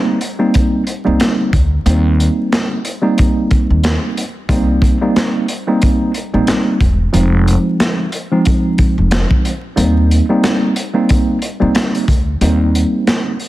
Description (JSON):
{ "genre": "hip hop, boom-bap hip-hop", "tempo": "91 BPM", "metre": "4/4", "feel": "swing 59% on 16ths", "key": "unclear", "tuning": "A4 = 439 Hz", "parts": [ { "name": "mellow tine electric piano", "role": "accompaniment", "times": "0.0-13.3 s", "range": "F3 to Eb4", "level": "-15 LUFS", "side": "right 1 dB", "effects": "medium stereo tremolo, cassette tape, high-pass filter, low-pass filter" }, { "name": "crunchy breakbeat drum kit", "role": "drums", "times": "0.2-13.5 s", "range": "handclaps, hi-hat, kick drum, snare drum", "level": "-16 LUFS", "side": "equal", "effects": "none" }, { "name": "upright bass", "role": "bass", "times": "1.1-12.8 s", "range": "E1 to Eb2", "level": "-14 LUFS", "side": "equal", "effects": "none" } ], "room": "light reverb, studio reverb", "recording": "dense, heavily limited modern master, vinyl crackle", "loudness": "-12 LUFS", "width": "side -16 dB against mid", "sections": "0.0-13.5 A section", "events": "kick muted 9.8-11.1", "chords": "0.0 Eb6; 4.5 Cm7; 7.1 Fm7; 9.8 Eb6" }